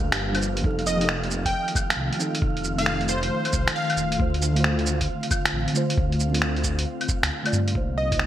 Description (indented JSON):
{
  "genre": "future garage",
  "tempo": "135 BPM",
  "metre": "4/4",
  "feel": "swing 65% on 16ths",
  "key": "unclear",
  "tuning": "A4 = 439 Hz",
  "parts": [
    { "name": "muted felt-like synth keys", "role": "accompaniment", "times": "0.0-8.3 s", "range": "C3 to D5", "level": "-29 LUFS", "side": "equal", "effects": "chorus, sidechain pumping, digital delay" },
    { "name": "ethereal airy pad", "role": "sustained chords", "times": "0.0-8.3 s", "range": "C3 to G4", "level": "-32 LUFS", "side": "left 1 dB", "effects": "ensemble chorus, built-in reverb, sidechain pumping" },
    { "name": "swelling detuned saw bass", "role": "bass", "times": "0.0-8.3 s", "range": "Eb1 to G2", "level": "-27 LUFS", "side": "equal", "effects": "none" },
    { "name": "wind-like tuned noise texture", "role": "texture", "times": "0.0-8.3 s", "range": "C5 to F5", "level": "-36 LUFS", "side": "right 6 dB", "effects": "built-in reverb" },
    { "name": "lo-fi sampler-style drum kit", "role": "drums", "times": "0.1-8.3 s", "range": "cabasa, claves, finger snaps, hi-hat", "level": "-26 LUFS", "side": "equal", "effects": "gated reverb" },
    { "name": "electronic kick drum", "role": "drums", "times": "0.6-8.2 s", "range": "none", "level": "-26 LUFS", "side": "equal", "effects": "none" },
    { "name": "plucky unison lead", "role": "melody", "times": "0.9-4.2, 8.0-8.2 s", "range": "C5 to G5", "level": "-28 LUFS", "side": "equal", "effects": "digital delay" }
  ],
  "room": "light reverb, digital ambience",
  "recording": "bright 1980s-style digital production, vinyl crackle",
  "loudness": "-21 LUFS",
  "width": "side -12 dB against mid",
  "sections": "0.0-7.8 A section",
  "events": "none",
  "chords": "0.0 Gm7; 0.6 F7; 4.2 Dm7; 7.8 Cm7"
}